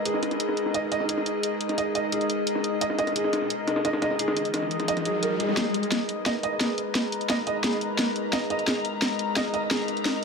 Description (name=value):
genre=dark technical drum and bass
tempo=174 BPM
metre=4/4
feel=straight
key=G# minor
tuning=A4 = 439 Hz
part: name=metallic inharmonic drone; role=sustained chords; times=0.0-10.2 s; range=G#3 to D#5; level=-30 LUFS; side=left 1 dB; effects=chorus, built-in reverb
part: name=airy breathy pad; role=texture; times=0.0-10.2 s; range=G#4 to A#5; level=-32 LUFS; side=left 2 dB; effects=chorus
part: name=felt-muted upright piano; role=arpeggios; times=0.1-9.8 s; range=G#4 to D#5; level=-31 LUFS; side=right 3 dB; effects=low-pass filter, digital delay
part: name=drum and bass drum kit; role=drums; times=0.1-10.1 s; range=hi-hat, snare drum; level=-28 LUFS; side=equal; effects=none
part: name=jungle sampler-style drum kit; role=drums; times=0.1-5.6 s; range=hi-hat, snare drum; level=-31 LUFS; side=left 1 dB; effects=high-pass filter on hats, low-pass filter on hats, high-pass filter on snare, low-pass filter on snare, high-pass filter on room, low-pass filter on room
part: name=riser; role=sound effects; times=4.2-5.6 s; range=none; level=-32 LUFS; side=left 2 dB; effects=none
room=moderate lush hall reverb, RT60 2.6 s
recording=none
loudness=-24 LUFS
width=side -5 dB against mid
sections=0.0-5.6 A section; 5.6-10.2 B section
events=riser 4.2-5.6; build-up 5.6-10.2; drum fill 5.6-10.2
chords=0.0 G#5; 5.6 G#m